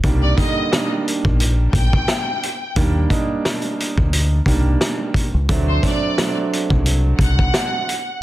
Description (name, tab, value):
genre	hip hop, boom-bap hip-hop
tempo	88 BPM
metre	4/4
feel	swing 56% on 16ths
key	unclear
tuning	A4 = 440 Hz
part	warm upright piano	accompaniment	0.0-7.9 s	D3 to Eb4	-23 LUFS	right 3 dB	cassette tape, high-pass filter, low-pass filter
part	deep dub fingered electric bass	bass	0.0-7.5 s	Bb1 to Eb2	-17 LUFS	equal	none
part	vintage drum kit	drums	0.0-8.1 s	hi-hat, kick drum, rim click, snare drum	-19 LUFS	equal	soft clipping on kick
part	bright studio violin section	melody	0.2-8.2 s	C5 to G5	-24 LUFS	equal	high-pass filter, low-pass filter, tape echo
room	studio reverb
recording	dense, heavily limited modern master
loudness	-16 LUFS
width	side -15 dB against mid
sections	0.0-8.2 A section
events	none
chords	0.0 Cm7 (rootless); 2.8 Ebmaj7; 5.5 D7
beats	| 0.04 0.72 1.40 2.08 | 2.76 3.44 4.13 4.81 | 5.49 6.17 6.85 7.54